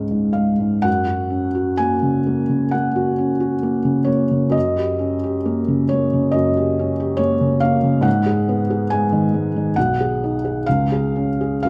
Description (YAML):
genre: classical, romantic nocturne for solo piano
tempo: 67 BPM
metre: 4/4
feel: uneven beats, rubato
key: F# major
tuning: A4 = 440 Hz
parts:
  - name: felt-muted upright piano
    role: solo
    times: 0.0-11.7 s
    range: B1 to G#5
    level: -19 LUFS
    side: equal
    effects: none
room: moderate scoring stage reverb, RT60 1.5 s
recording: close, detailed microphones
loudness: -19 LUFS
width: mono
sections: 0.0-11.7 A section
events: none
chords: 0.0 C#; 0.9 F#; 4.5 D#7/F#; 8.1 G#m7; 9.8 G#m/B; 10.7 C#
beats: | 0.87 1.81 2.75 3.64 | 4.55 5.46 6.35 7.21 | 8.05 8.90 9.76 10.66 | 11.63